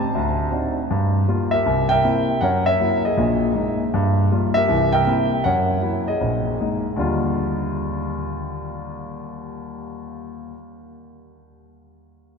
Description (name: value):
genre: solo jazz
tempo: 158 BPM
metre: 4/4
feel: swing 64% on 8ths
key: Eb major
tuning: A4 = 441 Hz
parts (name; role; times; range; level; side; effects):
- warm grand piano; solo; 0.0-10.5 s; Bb1 to A5; -19 LUFS; equal; none
room: wet cathedral reverb, RT60 4.8 s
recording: recorded in a church or concert hall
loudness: -18 LUFS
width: side -5 dB against mid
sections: 0.9-7.0 A section; 7.0-10.0 B section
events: none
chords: 0.1 D7b9; 0.9 Gm7; 1.7 C7; 2.4 Gb7; 3.2 Bb7sus4; 3.9 Gm7; 4.7 C7; 5.5 Gb7; 6.2 Bb7sus4; 7.0 Ebmaj9